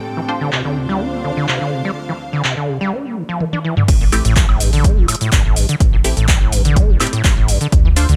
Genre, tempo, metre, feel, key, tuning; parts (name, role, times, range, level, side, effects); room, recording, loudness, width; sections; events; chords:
acid house; 125 BPM; 4/4; straight; A minor; A4 = 440 Hz
warbly tape-like pad; sustained chords; 0.0-2.9 s; D2 to F4; -31 LUFS; equal; chorus, built-in reverb, phaser, sidechain pumping
rich symphonic string section; texture; 0.0-2.9 s; C4 to G5; -29 LUFS; equal; sidechain pumping
acid bass, saw; riff; 0.2-8.2 s; G2 to D4; -22 LUFS; equal; overdrive, analog chorus, sidechain pumping, dub echo
filtered dub chord stab; stabs; 0.3-0.4, 4.1-8.1 s; A3 to C5; -25 LUFS; equal; phaser, dub echo
booming analog drum machine; drums; 0.5-8.2 s; crash cymbal, handclaps, hi-hat, shaker, toms, woodblock; -22 LUFS; equal; low-pass filter on hats, low-pass filter on perc, low-pass filter on snare, low-pass filter on toms, low-pass filter on cymbals
round analog bass; bass; 3.9-8.2 s; A1 to D2; -19 LUFS; equal; sidechain pumping
electronic kick drum; drums; 3.9-7.8 s; -16 LUFS; equal
digital ambience; -16 LUFS; mono
0.0-3.9 A section; 3.9-8.2 B section
filter sweep on acid bass 0.0-3.9; drum fill 3.4-3.9; drop 3.9-8.2
0.0 Dm7; 3.9 Am7